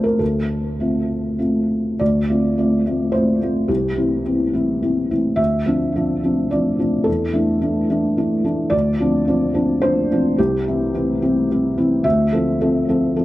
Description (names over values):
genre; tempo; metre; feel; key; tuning
neoclassical minimalist piano; 107 BPM; 3/4; rubato; D minor; A4 = 440 Hz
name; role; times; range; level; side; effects
felt-muted upright piano; solo; 0.0-13.2 s; C2 to E5; -16 LUFS; equal; none
room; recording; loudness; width
small room ambience; dry, close 1970s-style studio recording; -16 LUFS; side -16 dB against mid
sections
0.0-2.0 A section; 2.0-13.2 B section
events
none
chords
0.0 Dm7; 3.7 C; 5.4 Dm7; 7.1 Asus4/E; 8.7 Dm7; 10.4 C; 12.0 Dm7